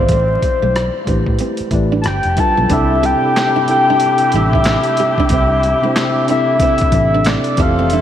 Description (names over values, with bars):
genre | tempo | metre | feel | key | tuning
R&B, neo-soul | 92 BPM | 4/4 | swing 60% on 16ths | C major | A4 = 438 Hz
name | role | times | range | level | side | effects
soft octave-layered synth lead | melody | 0.0-8.0 s | C5 to A5 | -16 LUFS | left 1 dB | chorus
nylon-string guitar | second line | 0.0-8.0 s | A3 to G4 | -24 LUFS | right 6 dB | none
mellow tine electric piano | accompaniment | 0.0-8.0 s | C3 to D5 | -19 LUFS | left 1 dB | medium stereo tremolo
vintage muted fingered electric bass | bass | 0.0-8.0 s | F1 to A2 | -18 LUFS | equal | none
boom bap sampler-style drum kit | drums | 0.1-8.0 s | handclaps, hi-hat, kick drum, rim click, snare drum | -20 LUFS | equal | none
warm saxophone section | stabs | 2.7-8.0 s | E3 to A4 | -22 LUFS | left 1 dB | none
room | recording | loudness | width
wet cathedral reverb, RT60 5.3 s | dreamy mix soaked in reverb, vinyl crackle | -12 LUFS | side -10 dB against mid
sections
0.0-2.7 A section; 2.7-8.0 B section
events
none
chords
0.1 Am7; 2.0 G13; 2.7 C69